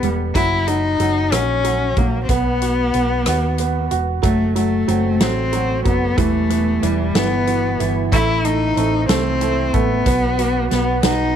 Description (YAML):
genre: six-eight pop ballad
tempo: 62 BPM (dotted quarters)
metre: 6/8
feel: straight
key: unclear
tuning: A4 = 440 Hz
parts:
  - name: warm cello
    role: melody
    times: 0.0-11.4 s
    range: G3 to E4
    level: -19 LUFS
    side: left 4 dB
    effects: none
  - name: clear baby grand piano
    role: accompaniment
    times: 0.0-11.4 s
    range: E3 to F#4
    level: -23 LUFS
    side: right 12 dB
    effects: none
  - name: hollow-body short-scale fingered electric bass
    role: bass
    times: 0.0-11.4 s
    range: E1 to D#2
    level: -22 LUFS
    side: equal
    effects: none
  - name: natural country drum kit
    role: drums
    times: 0.0-11.2 s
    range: hi-hat, kick drum, rim click, snare drum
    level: -22 LUFS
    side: left 1 dB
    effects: none
  - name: direct-recorded clean electric guitar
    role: arpeggios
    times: 4.2-11.4 s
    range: E3 to F#4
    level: -27 LUFS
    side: right 12 dB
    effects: none
room: light reverb, small room ambience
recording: 1960s-style stereo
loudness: -16 LUFS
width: side -9 dB against mid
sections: 0.0-11.4 A section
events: none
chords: 0.4 F#; 2.3 B; 4.2 F#dim; 6.2 Emadd9; 8.1 Am; 10.1 B5